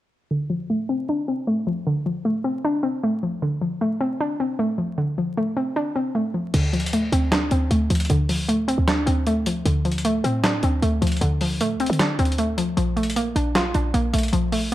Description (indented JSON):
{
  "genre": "hip hop, trap",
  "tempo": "154 BPM",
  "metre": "4/4",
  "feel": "half-time",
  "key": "unclear",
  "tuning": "A4 = 442 Hz",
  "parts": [
    { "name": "hollow square pluck", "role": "accompaniment", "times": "0.3-14.7 s", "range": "D3 to F4", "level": "-22 LUFS", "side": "equal", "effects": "chorus, low-pass filter" },
    { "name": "short 808-style bass", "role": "bass", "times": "6.5-14.7 s", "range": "Bb1 to D3", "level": "-23 LUFS", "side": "equal", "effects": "none" },
    { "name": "dusty soul sampler-style drum kit", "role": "drums", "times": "6.5-14.7 s", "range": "crash cymbal, handclaps, hi-hat, snare drum", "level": "-26 LUFS", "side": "equal", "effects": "overdrive" }
  ],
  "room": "light reverb, digital ambience",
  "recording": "dark, warm production, vinyl crackle",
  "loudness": "-20 LUFS",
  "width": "side -14 dB against mid",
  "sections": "0.3-6.5 A section; 6.5-14.7 B section",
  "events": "filter sweep on synth pluck 0.3-6.5",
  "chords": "0.3 Dm7; 12.8 Bbmaj7"
}